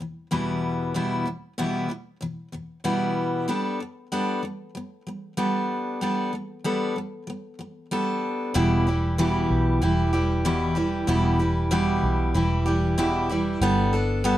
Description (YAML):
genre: acoustic pop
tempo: 95 BPM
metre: 4/4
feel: straight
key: E minor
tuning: A4 = 440 Hz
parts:
  - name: picked steel-string acoustic guitar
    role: accompaniment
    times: 0.0-14.4 s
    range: E2 to A4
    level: -23 LUFS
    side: equal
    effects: none
  - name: vintage muted fingered electric bass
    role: bass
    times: 8.6-14.4 s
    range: E1 to B1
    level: -25 LUFS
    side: equal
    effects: none
room: light reverb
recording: dark, warm production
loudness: -22 LUFS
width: side -13 dB against mid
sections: 0.0-8.6 A section; 8.6-14.4 B section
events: none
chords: 0.0 Em; 3.5 Gadd9; 8.6 Em; 13.6 Gadd9